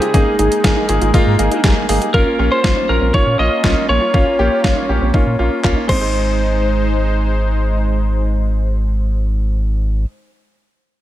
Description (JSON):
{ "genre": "synth-pop", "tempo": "120 BPM", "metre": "4/4", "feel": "straight", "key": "Ab major", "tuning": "A4 = 442 Hz", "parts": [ { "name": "lightly driven lead guitar", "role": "melody", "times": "0.0-10.0 s", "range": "Ab4 to Eb5", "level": "-19 LUFS", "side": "equal", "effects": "digital delay" }, { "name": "clear baby grand piano", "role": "accompaniment", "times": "0.0-10.1 s", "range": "Ab3 to Ab4", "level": "-20 LUFS", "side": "left 1 dB", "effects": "none" }, { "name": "warm analog pad", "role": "sustained chords", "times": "0.0-10.0 s", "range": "C3 to C5", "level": "-24 LUFS", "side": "right 1 dB", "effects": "chorus, tremolo" }, { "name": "soft round pluck", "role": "arpeggios", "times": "0.0-10.2 s", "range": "Ab3 to Ab4", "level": "-27 LUFS", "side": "right 3 dB", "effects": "none" }, { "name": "detuned 8-bit digital drum machine", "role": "drums", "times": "0.0-6.0 s", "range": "crash cymbal, handclaps, hi-hat, kick drum, snare drum", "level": "-17 LUFS", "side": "equal", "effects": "gated reverb" }, { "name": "rubbery square bass", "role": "bass", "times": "0.1-10.0 s", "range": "Ab1 to Bb2", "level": "-17 LUFS", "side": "equal", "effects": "none" } ], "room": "light reverb, digital ambience", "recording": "none", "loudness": "-13 LUFS", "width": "side -13 dB against mid", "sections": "0.0-2.1 A section; 2.1-6.1 B section; 6.1-10.1 C section", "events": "drum fill 5.6-6.1", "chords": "0.1 Absus2; 2.1 Bbm; 5.9 Ab" }